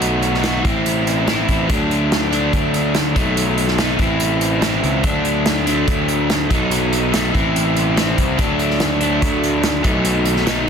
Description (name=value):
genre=indie rock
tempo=144 BPM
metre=4/4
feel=straight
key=unclear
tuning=A4 = 440 Hz
part: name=overdriven electric guitar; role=riff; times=0.0-10.7 s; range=E3 to F#4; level=-18 LUFS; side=equal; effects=none
part: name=fuzz picked electric bass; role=bass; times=0.0-10.6 s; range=A1 to D2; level=-21 LUFS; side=equal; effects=overdrive
part: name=unplugged drum kit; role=drums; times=0.0-10.6 s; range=hi-hat, kick drum, snare drum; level=-21 LUFS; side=equal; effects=none
room=little or no reverb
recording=dense, heavily limited modern master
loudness=-15 LUFS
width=side -7 dB against mid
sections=0.0-10.7 A section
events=none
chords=0.0 B7; 0.6 Am; 1.7 D; 3.2 B7; 4.0 Am; 5.0 D; 6.5 B7; 7.3 Am; 8.4 D; 9.8 B7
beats=| 0.02 0.43 0.85 1.27 | 1.69 2.11 2.53 2.95 | 3.37 3.79 4.21 4.62 | 5.04 5.46 5.88 6.30 | 6.72 7.13 7.55 7.97 | 8.39 8.80 9.22 9.64 | 10.05 10.47